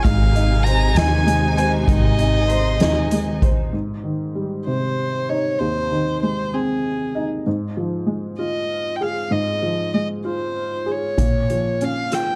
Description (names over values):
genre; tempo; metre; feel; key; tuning
six-eight pop ballad; 64 BPM (dotted quarters); 6/8; straight; unclear; A4 = 439 Hz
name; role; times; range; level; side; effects
warm violin; melody; 0.0-12.4 s; Ab4 to Bb5; -26 LUFS; equal; none
bright studio violin section; second line; 0.0-3.4 s; Ab5 to C6; -33 LUFS; equal; none
felt-muted upright piano; accompaniment; 0.0-12.4 s; Eb2 to C5; -26 LUFS; equal; none
rich studio string section; sustained chords; 0.0-3.7 s; C3 to Eb4; -28 LUFS; equal; none
upright bass; bass; 0.0-3.7 s; Ab1 to Eb2; -22 LUFS; equal; none
soft-mallet drum kit; drums; 0.0-3.6, 11.2-12.3 s; hi-hat, kick drum, rim click, snare drum; -24 LUFS; equal; none
room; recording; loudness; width
light reverb; dark, warm production; -21 LUFS; mono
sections
0.0-3.7 A section; 3.7-12.4 B section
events
none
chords
0.0 Ab; 3.7 Abmaj7; 7.5 Ab5; 11.2 Bbm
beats
| 0.05 0.96 | 1.88 2.80 | 3.73 4.67 | 5.60 6.53 | 7.46 8.39 | 9.31 10.25 | 11.19 12.12